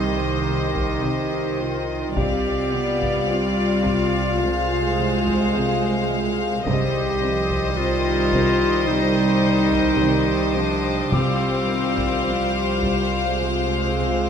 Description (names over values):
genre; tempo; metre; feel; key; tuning
cinematic, suspense film score; 53 BPM; 4/4; straight; unclear; A4 = 442 Hz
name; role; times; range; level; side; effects
clear studio violin section; melody; 0.0-14.3 s; Eb5 to F5; -28 LUFS; left 4 dB; none
mellow clarinet; second line; 0.0-14.3 s; C4 to G4; -25 LUFS; left 1 dB; none
rich studio violin section; second line; 0.0-14.3 s; C5 to D5; -28 LUFS; left 1 dB; none
warm studio viola section; accompaniment; 0.0-14.3 s; Eb3 to Ab3; -27 LUFS; right 1 dB; none
dark French horn section; sustained chords; 0.0-14.3 s; Eb3 to F4; -29 LUFS; left 3 dB; none
glass harmonica; sustained chords; 0.0-14.3 s; G4 to G5; -34 LUFS; left 1 dB; none
warm studio cello section; riff; 0.0-14.3 s; C3 to C4; -32 LUFS; right 2 dB; none
dark studio double bass section; bass; 0.0-14.3 s; C2; -29 LUFS; right 3 dB; none
warm studio cello section; bass; 0.0-14.3 s; Eb3 to C4; -30 LUFS; right 4 dB; none
bowed-like drone; drone; 0.1-14.3 s; C2; -33 LUFS; right 2 dB; none
bright concert grand piano; texture; 0.0-2.2, 11.1-14.3 s; D6; -38 LUFS; left 4 dB; none
taiko ensemble; drums; 0.7-14.0 s; none; -30 LUFS; left 1 dB; none
warm studio violin section; texture; 6.7-14.3 s; C6 to Eb6; -34 LUFS; left 4 dB; none
timpani; percussion; 11.1-12.8 s; C3; -28 LUFS; left 2 dB; none
room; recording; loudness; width
moderate concert hall reverb, RT60 2.0 s; none; -18 LUFS; side -7 dB against mid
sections
0.0-14.3 A section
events
none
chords
0.0 Cm; 2.2 G7sus4/C; 4.4 Fm/C; 6.7 G7sus4/C; 13.4 Fm/C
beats
1.03 | 2.17 3.30 4.42 5.55 | 6.67 7.78 8.88 10.00 | 11.12 12.26 13.42